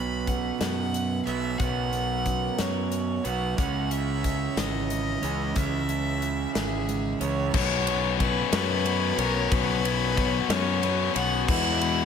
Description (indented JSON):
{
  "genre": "post-rock",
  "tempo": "61 BPM (dotted quarters)",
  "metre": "6/8",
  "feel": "straight",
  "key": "unclear",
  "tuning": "A4 = 440 Hz",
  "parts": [
    { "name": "bright violin", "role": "melody", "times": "0.0-12.1 s", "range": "G#4 to B5", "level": "-31 LUFS", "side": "equal", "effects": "analog delay" },
    { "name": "clear studio string section", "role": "sustained chords", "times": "0.0-12.1 s", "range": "E3 to E5", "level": "-36 LUFS", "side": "left 3 dB", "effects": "none" },
    { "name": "clean electric guitar", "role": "arpeggios", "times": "0.0-7.5 s", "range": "B2 to C#4", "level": "-37 LUFS", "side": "left 4 dB", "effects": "analog delay" },
    { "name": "crunchy overdriven guitar", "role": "riff", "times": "0.0-7.5 s", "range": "B2 to C#4", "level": "-30 LUFS", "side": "right 13 dB", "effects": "none" },
    { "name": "growling fingered electric bass", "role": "bass", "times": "0.0-12.1 s", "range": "G#1 to F#2", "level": "-30 LUFS", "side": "left 1 dB", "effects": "overdrive" },
    { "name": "big rock drum kit", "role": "drums", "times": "0.3-12.0 s", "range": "crash cymbal, hi-hat, kick drum, ride cymbal, snare drum", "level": "-30 LUFS", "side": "left 1 dB", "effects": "none" },
    { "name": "distorted electric guitar", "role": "riff", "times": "7.5-12.1 s", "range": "B2 to E4", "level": "-26 LUFS", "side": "left 16 dB", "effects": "overdrive" }
  ],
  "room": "light reverb, small room ambience",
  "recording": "none",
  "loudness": "-24 LUFS",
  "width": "side -7 dB against mid",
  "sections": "0.0-7.5 A section; 7.5-12.1 B section",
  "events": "none",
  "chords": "0.0 Bsus2; 3.6 C#madd9; 7.5 Bsus2; 11.5 Eadd9",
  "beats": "0.60 | 1.60 2.59 | 3.58 4.57 | 5.57 6.55 | 7.54 8.53 | 9.51 10.50 | 11.48"
}